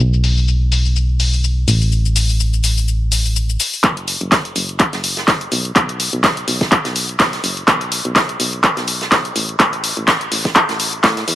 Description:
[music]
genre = piano house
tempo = 125 BPM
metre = 4/4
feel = swing 56% on 16ths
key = unclear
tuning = A4 = 440 Hz
[part]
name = solid FM bass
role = bass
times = 0.0-11.3 s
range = F#1 to A2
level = -18 LUFS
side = equal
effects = sidechain pumping, high-pass filter
[part]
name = punchy analog drum machine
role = drums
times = 0.0-11.3 s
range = handclaps, hi-hat, shaker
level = -16 LUFS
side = left 1 dB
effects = high-pass filter on perc, high-pass filter on hats, high-pass filter on snare
[part]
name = electronic kick drum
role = drums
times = 3.8-11.1 s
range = none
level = -17 LUFS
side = equal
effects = overdrive, high-pass filter on kick
[part]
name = warm soul drum kit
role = drums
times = 3.8-11.3 s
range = hi-hat, snare drum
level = -25 LUFS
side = right 2 dB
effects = high-pass filter on hats, high-pass filter on snare, high-pass filter on room
[sound]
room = light reverb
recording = low-pass filter, lossy compression artefacts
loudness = -14 LUFS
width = side -14 dB against mid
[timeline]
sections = 0.0-3.8 A section; 3.8-11.3 B section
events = filter sweep 0.0-3.8; build-up 3.8-11.3; drum fill 3.8-11.3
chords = none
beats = | 0.00 0.48 0.96 1.44 | 1.92 2.40 2.88 3.36 | 3.84 4.32 4.80 5.28 | 5.76 6.24 6.72 7.20 | 7.68 8.16 8.64 9.12 | 9.60 10.08 10.56 11.04

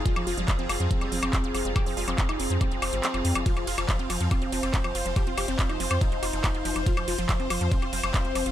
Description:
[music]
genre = psychedelic trance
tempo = 141 BPM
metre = 4/4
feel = straight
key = F minor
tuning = A4 = 442 Hz
[part]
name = evolving wavetable pad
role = sustained chords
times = 0.0-8.5 s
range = Ab4 to C5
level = -35 LUFS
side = left 1 dB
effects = phaser, built-in reverb, sidechain pumping
[part]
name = round analog bass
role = bass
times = 0.0-8.5 s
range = F1 to F2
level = -31 LUFS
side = equal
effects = none
[part]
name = bright studio string section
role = texture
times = 0.0-8.5 s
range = C4 to C6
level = -38 LUFS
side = right 1 dB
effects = sidechain pumping
[part]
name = overdriven synth lead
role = melody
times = 0.1-8.5 s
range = F3 to G4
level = -32 LUFS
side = equal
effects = distortion, phaser, sidechain pumping, dub echo
[part]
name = wide unison pluck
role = riff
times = 0.1-8.5 s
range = F3 to F4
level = -35 LUFS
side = right 2 dB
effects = auto-pan, sidechain pumping, tape echo
[part]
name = drum and bass drum kit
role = drums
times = 0.1-8.5 s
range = handclaps, hi-hat, ride cymbal, woodblock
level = -31 LUFS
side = left 1 dB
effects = none
[part]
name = electronic kick drum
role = drums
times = 0.1-8.2 s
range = none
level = -25 LUFS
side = equal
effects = none
[sound]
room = little or no reverb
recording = none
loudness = -24 LUFS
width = side -12 dB against mid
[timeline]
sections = 0.0-8.5 A section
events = kick drops out 3.0-3.5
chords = 0.0 F5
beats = | 0.06 0.48 0.91 1.33 | 1.76 2.18 2.61 3.04 | 3.46 3.89 4.31 4.74 | 5.16 5.59 6.01 6.44 | 6.87 7.29 7.72 8.14

